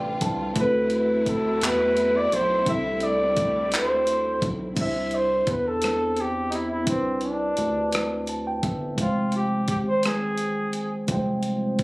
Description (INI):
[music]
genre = slow six-eight R&B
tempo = 57 BPM (dotted quarters)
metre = 6/8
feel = straight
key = C major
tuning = A4 = 440 Hz
[part]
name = warm flugelhorn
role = melody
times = 0.0-11.1 s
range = C4 to E5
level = -24 LUFS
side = equal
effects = none
[part]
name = mellow tine electric piano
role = accompaniment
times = 0.0-11.8 s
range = G3 to A5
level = -27 LUFS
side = equal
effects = phaser
[part]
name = warm studio string section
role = sustained chords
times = 0.0-4.7 s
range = C3 to F4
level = -33 LUFS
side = equal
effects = none
[part]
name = rubbery square bass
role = bass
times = 0.0-11.8 s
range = F1 to E2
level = -32 LUFS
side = equal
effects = none
[part]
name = dusty soul sampler-style drum kit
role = drums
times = 0.2-11.8 s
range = crash cymbal, handclaps, hi-hat, kick drum, rim click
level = -29 LUFS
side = equal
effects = none
[sound]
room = little or no reverb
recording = recorded on a phone in the room, club reverb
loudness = -22 LUFS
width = side -22 dB against mid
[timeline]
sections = 0.0-4.8 A section; 4.8-11.8 B section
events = tine electric piano fill 0.0-0.6, 7.9-9.0; flugelhorn solo 4.8-11.8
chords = 0.0 G9sus4; 0.6 D13; 2.7 C6; 4.8 Cmaj9; 9.0 Fmadd9